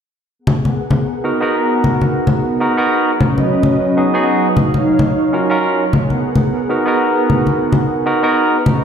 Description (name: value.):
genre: liquid drum and bass.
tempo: 176 BPM.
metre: 4/4.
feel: straight.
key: G# dorian.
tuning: A4 = 439 Hz.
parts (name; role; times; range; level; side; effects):
warm analog pad; sustained chords; 0.4-8.8 s; F#3 to F#5; -18 LUFS; right 1 dB; wide subtle chorus.
congas; percussion; 0.5-8.7 s; none; -16 LUFS; left 2 dB; none.
barky tine electric piano; accompaniment; 1.2-8.6 s; B3 to A#4; -16 LUFS; right 1 dB; low-pass filter, dub echo.
room: moderate lush hall reverb, RT60 2.0 s, small room ambience.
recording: played on a big sound system in a bare room, large studio reverb.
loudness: -13 LUFS.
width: side -7 dB against mid.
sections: 0.4-8.8 A section.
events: none.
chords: 0.4 G#m9; 3.1 C#9sus4; 4.5 D#m9; 5.8 G#m9.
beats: | 0.39 0.73 1.07 1.42 | 1.75 2.10 2.44 2.78 | 3.12 3.46 3.80 4.14 | 4.48 4.82 5.17 5.50 | 5.85 6.19 6.53 6.87 | 7.21 7.55 7.89 8.23 | 8.57.